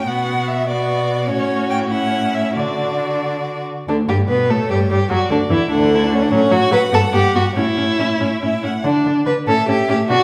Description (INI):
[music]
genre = quick classical-period movement for string quartet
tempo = 89-100 BPM (dotted quarters)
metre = 6/8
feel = rubato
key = D major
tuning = A4 = 440 Hz
[part]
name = rich violin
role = melody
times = 0.0-10.2 s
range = C#5 to G5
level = -26 LUFS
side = equal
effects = none
[part]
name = warm violin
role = second line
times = 0.0-10.2 s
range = C#4 to B4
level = -21 LUFS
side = equal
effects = none
[part]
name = rich viola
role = accompaniment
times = 0.0-10.2 s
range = D3 to D4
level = -25 LUFS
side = equal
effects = none
[part]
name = rich cello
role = bass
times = 0.0-10.2 s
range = D2 to D3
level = -23 LUFS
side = equal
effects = none
[sound]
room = wet recital hall reverb, RT60 1.5 s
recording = recorded in a church or concert hall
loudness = -17 LUFS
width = mono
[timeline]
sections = 0.0-3.9 A section; 3.9-10.2 B section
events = none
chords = 0.1 Bm; 1.3 F#m/A; 2.6 D; 3.9 G/D; 4.5 A7; 5.1 Dadd9; 6.3 F#m; 6.9 Gmaj7; 7.6 A; 8.8 N.C.; 9.5 A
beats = | 0.08 0.69 | 1.29 1.92 | 2.56 3.23 | 3.88 4.50 | 5.11 5.71 | 6.31 6.93 | 7.57 8.21 | 8.85 9.48 | 10.10